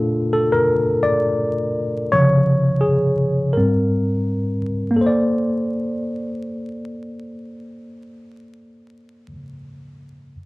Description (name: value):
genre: hip hop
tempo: 84 BPM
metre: 4/4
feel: swing 56% on 16ths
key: Bb major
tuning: A4 = 440 Hz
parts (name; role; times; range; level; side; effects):
- mellow tine electric piano; accompaniment; 0.0-10.4 s; Ab2 to D5; -18 LUFS; equal; medium stereo tremolo, cassette tape, low-pass filter, plate reverb
room: wet studio reverb, RT60 0.5 s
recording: worn, warbling old tape, cassette tape, vinyl crackle, warbly pitch drift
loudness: -17 LUFS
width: side -21 dB against mid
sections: 0.0-5.0 A section; 5.0-7.8 B section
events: tine electric piano solo 0.0-5.0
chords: 0.0 Bbmaj7; 2.1 Dbmaj7; 3.6 Abmaj9; 5.0 Bbmaj9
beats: 0.70 1.41 | 2.13 2.84 3.56 4.27 | 4.99 5.70 6.41 7.13